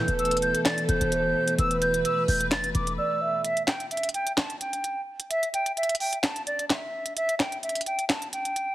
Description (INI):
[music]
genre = hip hop, trap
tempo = 129 BPM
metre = 4/4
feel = half-time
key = unclear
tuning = A4 = 440 Hz
[part]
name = concert flute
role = melody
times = 0.0-8.7 s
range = D5 to A6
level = -28 LUFS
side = equal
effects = tape echo
[part]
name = hollow clarinet-like synth lead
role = second line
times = 0.0-3.4 s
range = B4 to E5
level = -28 LUFS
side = right 3 dB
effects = chorus, tape echo
[part]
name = bright symphonic string section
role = sustained chords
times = 0.0-3.4 s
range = B2 to B4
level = -30 LUFS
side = left 1 dB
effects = none
[part]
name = short 808-style bass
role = bass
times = 0.0-3.0 s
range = E1 to F1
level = -30 LUFS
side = equal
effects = none
[part]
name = trap drum kit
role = drums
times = 0.1-8.7 s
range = handclaps, hi-hat, snare drum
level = -28 LUFS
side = equal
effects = none
[sound]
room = moderate recital hall reverb, RT60 1.3 s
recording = heavily compressed radio sound, multiband compression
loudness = -24 LUFS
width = side -15 dB against mid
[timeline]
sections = 0.0-3.4 A section; 3.4-8.7 B section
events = drums muted 3.0-3.4; break 3.4-8.7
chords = 0.0 Esus4; 3.4 N.C.